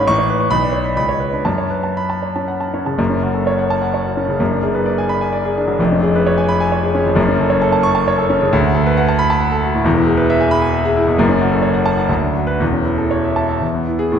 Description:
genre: classical, virtuoso piano study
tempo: 116-137 BPM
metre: 3/4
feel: rubato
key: F# minor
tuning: A4 = 440 Hz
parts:
  - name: warm concert grand piano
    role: solo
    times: 0.0-14.2 s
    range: E1 to C#6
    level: -14 LUFS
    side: equal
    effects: none
room: wet scoring stage reverb, RT60 1.6 s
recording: recorded in a church or concert hall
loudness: -14 LUFS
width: side -8 dB against mid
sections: 0.0-3.0 A section; 3.0-14.1 B section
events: none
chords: 0.1 Aadd9; 0.5 Bm; 1.0 Bmadd9/C#; 1.5 F#m; 4.4 G#m7b5/F#; 5.8 C#7/E#; 7.2 F#m; 8.5 Bm7/D; 9.9 E; 11.2 F#m; 12.1 Bm/D; 12.6 A/E; 13.6 E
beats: | 0.07 0.52 0.97 | 1.46 1.98 2.49 | 2.99 3.46 3.93 | 4.40 4.86 5.33 | 5.79 6.25 6.71 | 7.17 7.62 8.07 | 8.52 8.97 9.41 | 9.85 10.30 10.74 | 11.19 11.64 12.10 | 12.61 13.12 13.63 | 14.13

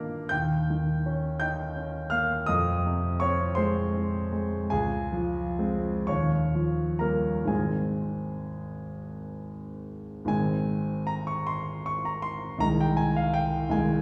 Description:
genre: classical, romantic nocturne for solo piano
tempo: 40-57 BPM (dotted quarters)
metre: 6/8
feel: rubato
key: Ab major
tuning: A4 = 440 Hz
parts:
  - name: clear concert grand piano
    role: solo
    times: 0.0-14.0 s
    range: Ab1 to G6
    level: -28 LUFS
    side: equal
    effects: none
room: wet recital hall reverb, RT60 1.8 s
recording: recorded in a church or concert hall, small room ambience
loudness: -28 LUFS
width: mono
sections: 0.0-10.3 A section; 10.3-14.0 A section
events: none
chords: 0.3 Eb7; 2.5 Fm; 4.7 Dbmaj7; 6.1 Eb9; 7.5 Ab; 12.6 Ab/C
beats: | 0.32 1.41 | 2.49 3.57 | 4.71 6.08 | 7.49 8.90 | 10.30 11.48 | 12.62 13.73

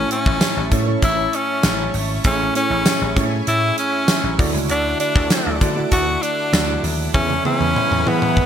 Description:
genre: 1980s-style pop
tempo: 98 BPM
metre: 4/4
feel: straight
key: A major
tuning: A4 = 441 Hz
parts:
  - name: edgy tenor saxophone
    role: melody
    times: 0.0-8.5 s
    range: B3 to F#4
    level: -20 LUFS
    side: equal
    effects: digital delay
  - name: FM electric piano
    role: accompaniment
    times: 0.0-8.5 s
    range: A2 to E5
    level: -25 LUFS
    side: right 2 dB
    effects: chorus
  - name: lush unison pad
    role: sustained chords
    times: 0.0-8.5 s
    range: E4 to D6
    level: -28 LUFS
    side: right 1 dB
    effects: chorus
  - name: vintage slap bass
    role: bass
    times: 0.0-8.5 s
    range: G#1 to E3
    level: -24 LUFS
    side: equal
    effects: none
  - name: gated 80s drum kit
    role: drums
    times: 0.1-8.5 s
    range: hi-hat, kick drum, snare drum, tambourine, toms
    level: -19 LUFS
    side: equal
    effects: gated reverb
room: light reverb, small room ambience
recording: bright 1980s-style digital production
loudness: -16 LUFS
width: side -9 dB against mid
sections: 0.0-8.5 A section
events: drum fill 7.1-8.5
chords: 0.0 A; 4.4 Dadd9; 7.1 E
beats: 0.41 1.02 1.64 | 2.25 2.86 3.47 4.09 | 4.70 5.31 5.92 6.54 | 7.15 7.76 8.37

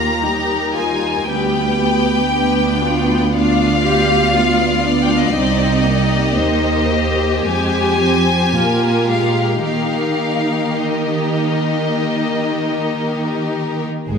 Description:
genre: classical, slow romantic movement for string orchestra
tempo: 52-60 BPM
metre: 4/4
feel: rubato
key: Eb major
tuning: A4 = 442 Hz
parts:
  - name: rich studio violin section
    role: melody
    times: 0.0-14.2 s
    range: C5 to Bb5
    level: -20 LUFS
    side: left 4 dB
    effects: none
  - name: rich studio violin section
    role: second line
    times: 0.0-14.2 s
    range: F4 to D5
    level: -22 LUFS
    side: left 5 dB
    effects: none
  - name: warm studio viola section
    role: accompaniment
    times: 0.0-14.2 s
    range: G3 to G4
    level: -19 LUFS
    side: right 1 dB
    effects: none
  - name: rich studio cello section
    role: bass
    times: 0.0-14.2 s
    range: C2 to Eb3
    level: -20 LUFS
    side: right 3 dB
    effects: none
  - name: rich studio double bass section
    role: bass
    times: 14.1-14.2 s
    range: Ab1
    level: -23 LUFS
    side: right 2 dB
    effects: none
room: moderate scoring stage reverb, RT60 2.1 s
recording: none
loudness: -14 LUFS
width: side -6 dB against mid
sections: 0.0-14.1 A section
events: none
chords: 0.0 Eb; 1.3 G7/D; 5.4 Cm; 7.5 Fm; 8.5 Bb5; 9.6 Eb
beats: 0.23 | 1.28 2.33 3.34 4.35 | 5.35 6.36 7.47 8.55 | 9.64 10.76 11.88 13.01 | 14.09

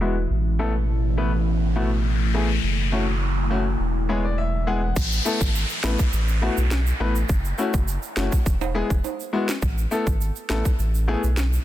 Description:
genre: dancehall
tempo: 103 BPM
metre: 4/4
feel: straight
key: A major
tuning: A4 = 441 Hz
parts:
  - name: clear baby grand piano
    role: accompaniment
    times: 0.0-11.2 s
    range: G#3 to F#5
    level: -27 LUFS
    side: left 3 dB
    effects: sidechain pumping, low-pass filter
  - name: deep dark ambient pad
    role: sustained chords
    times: 0.0-5.0 s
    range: B2 to E4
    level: -30 LUFS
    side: right 1 dB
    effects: chorus, built-in reverb, sidechain pumping, low-pass filter
  - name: round analog bass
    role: bass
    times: 0.0-11.6 s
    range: E1 to B1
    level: -23 LUFS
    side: equal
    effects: none
  - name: noise sweep and downlifter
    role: sound effects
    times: 0.9-9.6 s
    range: none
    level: -31 LUFS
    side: left 1 dB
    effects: none
  - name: island pop drum kit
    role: drums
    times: 5.0-11.5 s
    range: crash cymbal, kick drum, snare drum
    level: -24 LUFS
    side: equal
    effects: none
  - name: egg shaker and timbales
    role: percussion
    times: 5.0-11.6 s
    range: none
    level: -34 LUFS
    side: right 11 dB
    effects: none
room: little or no reverb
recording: dense, heavily limited modern master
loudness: -20 LUFS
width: side -13 dB against mid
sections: 0.0-5.0 A section; 5.0-11.6 B section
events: noise sweep 0.9-5.0; grand piano fill 3.8-5.0; hi-hats muted 5.0-11.6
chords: 0.3 Asus2; 2.6 F#m7; 3.8 E; 5.0 Asus2; 7.3 F#m7; 8.5 E; 9.6 Asus2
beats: | 0.30 0.89 1.47 2.05 | 2.63 3.22 3.80 4.38 | 4.96 5.55 6.13 6.71 | 7.29 7.88 8.46 9.04 | 9.62 10.21 10.79 11.37

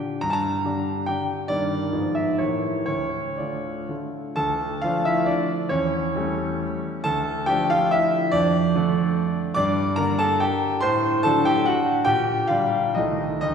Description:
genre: classical, romantic triple-time dance for piano with dotted rhythms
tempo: 115-156 BPM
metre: 3/4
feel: rubato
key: D minor, G minor from 9.6 s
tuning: A4 = 436 Hz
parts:
  - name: warm concert grand piano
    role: solo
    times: 0.0-13.5 s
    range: C2 to D6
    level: -20 LUFS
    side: equal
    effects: none
room: wet concert hall reverb, RT60 2.1 s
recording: heard from further back in the room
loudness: -20 LUFS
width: side -6 dB against mid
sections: 0.0-4.4 A section; 4.4-13.5 B section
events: none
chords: 0.2 Gm; 1.5 Eb/G; 1.9 G#dim7; 2.4 A7b9; 2.9 Dm; 5.7 A7/E; 7.0 Dm; 8.3 Dm/F; 9.6 Gm; 10.8 D7/A; 12.1 Gm/Bb; 13.0 Am7b5/C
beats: | 0.24 0.66 1.10 | 1.51 1.93 2.40 | 2.88 3.39 3.90 | 4.38 4.83 5.29 | 5.72 6.17 6.62 | 7.05 7.49 7.92 | 8.33 8.75 9.18 | 9.58 9.99 10.42 | 10.82 11.25 11.67 | 12.07 12.49 12.96 | 13.43

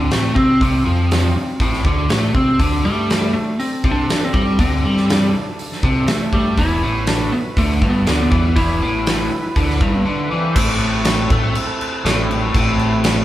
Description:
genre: blues rock power trio and southern rock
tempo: 121 BPM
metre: 4/4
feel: straight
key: A minor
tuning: A4 = 440 Hz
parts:
  - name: lightly driven lead guitar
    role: melody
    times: 0.0-10.0 s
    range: A3 to E4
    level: -21 LUFS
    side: equal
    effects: none
  - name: biting overdriven guitar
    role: riff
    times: 0.0-13.2 s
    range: E2 to C4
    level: -19 LUFS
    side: equal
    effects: spring reverb
  - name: growling fingered electric bass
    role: bass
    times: 0.0-13.2 s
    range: E1 to C3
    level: -22 LUFS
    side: equal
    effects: overdrive
  - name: huge arena drum kit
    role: drums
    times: 0.1-13.2 s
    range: crash cymbal, hi-hat, kick drum, snare drum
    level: -20 LUFS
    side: equal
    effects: none
  - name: overdriven tonewheel organ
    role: sustained chords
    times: 2.6-13.2 s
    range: A3 to D5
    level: -29 LUFS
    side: right 2 dB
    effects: chorus vibrato, slow rotary speaker
room: moderate large studio reverb, RT60 1.4 s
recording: band playing live in one room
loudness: -15 LUFS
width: side -14 dB against mid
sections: 0.0-10.6 A section; 10.6-13.2 B section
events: break 10.1-10.6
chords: 0.0 Amadd11; 2.6 D5; 6.6 E5; 10.6 Am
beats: 0.11 | 0.60 1.10 1.60 2.10 | 2.60 3.10 3.59 4.09 | 4.59 5.09 5.58 6.08 | 6.58 7.08 7.57 8.07 | 8.57 9.06 9.56 10.06 | 10.55 11.05 11.55 12.04 | 12.54 13.03

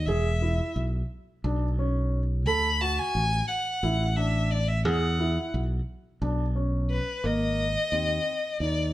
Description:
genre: progressive instrumental, band music in an uneven meter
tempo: 176 BPM (eighths)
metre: 7/8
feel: straight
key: unclear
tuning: A4 = 440 Hz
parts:
  - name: rich violin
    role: melody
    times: 0.0-8.9 s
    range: B4 to B5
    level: -28 LUFS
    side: left 1 dB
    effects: none
  - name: modern bright fingered electric bass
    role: bass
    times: 0.0-8.9 s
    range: E1 to E2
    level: -27 LUFS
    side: equal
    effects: none
  - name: dark grand piano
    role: arpeggios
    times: 0.1-8.9 s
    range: A#3 to A4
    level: -32 LUFS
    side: right 1 dB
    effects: none
room: moderate large studio reverb, RT60 1.2 s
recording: band playing live in one room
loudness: -24 LUFS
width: side -15 dB against mid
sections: 0.0-7.2 A section; 7.2-8.9 B section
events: violin solo 0.0-7.2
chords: 0.1 E5; 2.5 Dsus2; 4.9 Esus2; 7.2 G#add9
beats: | 0.07 0.41 0.76 1.10 1.44 1.78 2.12 | 2.46 2.80 3.15 3.49 3.83 4.17 4.51 | 4.85 5.19 5.53 5.87 6.21 6.56 6.90 | 7.24 7.58 7.92 8.26 8.61

